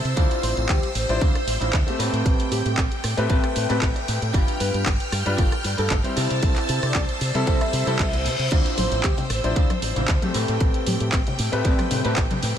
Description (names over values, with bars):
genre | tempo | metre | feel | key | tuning
nu-disco, nu disco | 115 BPM | 4/4 | swing 53% on 16ths | D dorian | A4 = 440 Hz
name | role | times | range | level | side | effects
string machine, full ensemble | sustained chords | 0.0-12.6 s | C5 to F6 | -30 LUFS | equal | ensemble chorus, sidechain pumping
fingered electric bass with an envelope filter | bass | 0.0-12.5 s | G1 to C3 | -26 LUFS | equal | none
pop drum kit | drums | 0.1-12.5 s | crash cymbal, handclaps, hi-hat, rim click | -29 LUFS | right 1 dB | small room reverb
electric guitar at the edge of break-up | riff | 0.2-12.5 s | C4 to D5 | -30 LUFS | right 1 dB | wide subtle chorus, ping-pong delay
electronic kick drum | drums | 0.2-12.3 s | none | -22 LUFS | equal | small room reverb
wide unison lead | melody | 0.4-11.1 s | G4 to E5 | -33 LUFS | equal | cassette tape, ping-pong delay
clear grand piano | accompaniment | 1.1-12.2 s | F3 to C5 | -29 LUFS | left 2 dB | sidechain pumping, ping-pong delay
reverse cymbal | sound effects | 8.0-8.5 s | none | -35 LUFS | left 4 dB | none
congas | percussion | 8.8-12.4 s | none | -30 LUFS | left 2 dB | none
room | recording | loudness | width
light reverb | none | -20 LUFS | side -9 dB against mid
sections
0.0-12.6 A section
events
reverse cymbal 8.0-8.5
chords
0.2 Dm9; 2.0 Am9; 4.3 G7; 6.2 C6; 8.5 Dm9; 10.3 Am9